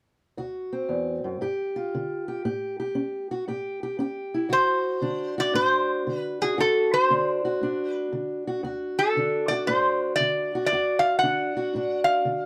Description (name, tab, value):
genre	acoustic country blues, solo or duo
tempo	116 BPM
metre	4/4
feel	swing 66% on 8ths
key	D mixolydian from 4.5 s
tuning	A4 = 440 Hz
part	fingerpicked steel-string acoustic guitar	accompaniment	0.4-12.5 s	D2 to G4	-30 LUFS	equal	none
part	metal-body resonator slide guitar	melody	4.5-12.5 s	G#4 to F#5	-25 LUFS	equal	none
room	light reverb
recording	close, detailed microphones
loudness	-25 LUFS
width	mono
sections	0.4-4.5 A section; 4.5-12.5 B section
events	none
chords	0.4 D7; 1.4 G5; 2.4 A7; 4.5 D7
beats	| 0.38 0.90 1.41 1.93 | 2.45 2.96 3.48 4.00 | 4.51 5.03 5.54 6.06 | 6.57 7.09 7.60 8.12 | 8.63 9.15 9.66 10.18 | 10.69 11.21 11.72 12.24